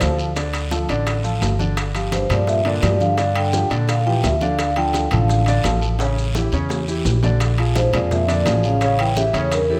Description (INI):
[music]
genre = Afro-Cuban jazz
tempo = 170 BPM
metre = 4/4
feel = straight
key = D minor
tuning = A4 = 440 Hz
[part]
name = vibraphone with soft mallets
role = melody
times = 0.0-9.8 s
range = A4 to G5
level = -24 LUFS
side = equal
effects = none
[part]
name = mellow trombone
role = second line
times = 0.0-9.8 s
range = F2 to E3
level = -30 LUFS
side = equal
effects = none
[part]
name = warm grand piano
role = accompaniment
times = 0.0-9.8 s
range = C#3 to D5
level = -27 LUFS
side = equal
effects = none
[part]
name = upright bass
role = bass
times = 0.0-9.8 s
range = G1 to Bb2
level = -23 LUFS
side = equal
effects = none
[part]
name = bongos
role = percussion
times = 0.0-9.8 s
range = none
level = -35 LUFS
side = equal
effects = none
[part]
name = congas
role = percussion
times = 0.0-9.8 s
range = none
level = -31 LUFS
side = equal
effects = none
[part]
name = guiro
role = percussion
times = 0.0-9.8 s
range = none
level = -37 LUFS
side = equal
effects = none
[part]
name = maracas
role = percussion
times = 0.0-9.7 s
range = none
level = -38 LUFS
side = equal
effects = none
[part]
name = timbales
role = percussion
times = 0.0-9.7 s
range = none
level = -31 LUFS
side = equal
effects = none
[sound]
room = light reverb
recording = close, detailed microphones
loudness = -19 LUFS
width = mono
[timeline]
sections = 0.0-9.8 A section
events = drum fill 6.0-7.4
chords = 0.0 Dm; 1.8 Gm7; 4.6 Dm; 6.0 A7b9; 7.4 Bb7; 8.8 A7